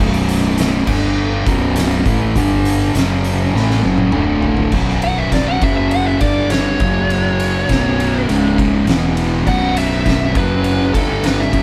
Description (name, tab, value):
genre	stoner and doom metal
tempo	101 BPM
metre	4/4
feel	straight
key	B minor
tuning	A4 = 440 Hz
part	thick fuzz guitar	riff	0.0-11.6 s	B1 to A3	-18 LUFS	equal	distortion
part	fuzz fingered electric bass	bass	0.0-11.6 s	B0 to A1	-24 LUFS	equal	overdrive
part	oversized low-tuned drum kit	drums	0.1-11.6 s	crash cymbal, hi-hat, kick drum, ride cymbal, snare drum, toms	-22 LUFS	equal	none
part	fuzz lead guitar	melody	5.0-11.6 s	A4 to F#5	-23 LUFS	equal	distortion
room	moderate small room reverb, RT60 0.6 s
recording	band playing live in one room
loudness	-16 LUFS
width	mono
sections	0.0-4.7 A section; 4.7-11.6 B section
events	drum fill 3.5-4.7; lead electric guitar solo 4.7-11.6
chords	0.0 B5; 0.9 G5; 1.5 B5; 2.4 G5; 2.9 F#5; 3.5 F#m7; 4.1 D5; 4.7 B5; 5.6 F#5; 6.2 G5; 6.8 F#5; 7.7 B5; 8.3 C#5; 8.9 E5; 9.5 B5; 10.4 F#5; 10.9 G5